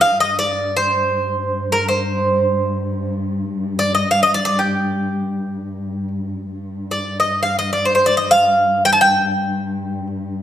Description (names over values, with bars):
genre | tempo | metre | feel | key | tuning
turkish | free time | none | none | G makam ussak | A4 = 440 Hz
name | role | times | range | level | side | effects
Greek bouzouki | melody | 0.0-10.1 s | G4 to A5-30c | -16 LUFS | equal | none
dark chamber cello section | drone | 0.0-10.4 s | G2 | -23 LUFS | left 1 dB | none
room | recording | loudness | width
wet recital hall reverb, RT60 1.7 s | none | -16 LUFS | side -11 dB against mid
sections
0.0-6.5 A section; 6.5-10.4 A section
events
none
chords
none